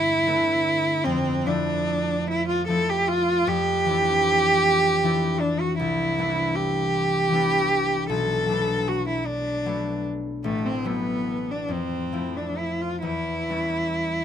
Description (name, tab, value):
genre	classical, impressionist duo for cello and harp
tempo	43-53 BPM (dotted quarters)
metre	6/8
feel	rubato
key	unclear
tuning	A4 = 440 Hz
part	clear cello	melody	0.0-14.2 s	A3 to A4	-22 LUFS	right 1 dB	none
part	concert harp	accompaniment	0.0-14.2 s	A1 to E4	-27 LUFS	left 2 dB	none
room	light reverb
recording	close, detailed microphones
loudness	-21 LUFS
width	side -9 dB against mid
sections	0.0-14.2 A section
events	none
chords	0.0 G69; 1.0 Fmaj7; 3.5 D9sus4/F; 5.8 Cmaj9; 8.1 Bm7; 10.4 Am6; 11.7 Fmaj7; 13.0 Em6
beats	| 1.04 2.27 | 3.47 4.64 | 5.79 6.93 | 8.09 9.27 | 10.44 11.70 | 13.04